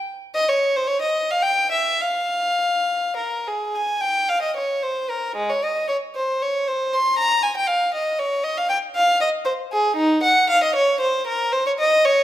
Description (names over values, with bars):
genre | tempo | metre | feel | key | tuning
classical, baroque-style suite movement for unaccompanied violin | 100-120 BPM | 3/4 | rubato | F minor | A4 = 440 Hz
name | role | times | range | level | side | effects
rich violin | solo | 0.3-12.2 s | Ab3 to C6 | -18 LUFS | equal | none
room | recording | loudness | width
moderate recital hall reverb, RT60 1.4 s | none | -18 LUFS | side -12 dB against mid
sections
0.0-3.8 A section; 3.8-12.2 B section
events
none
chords
none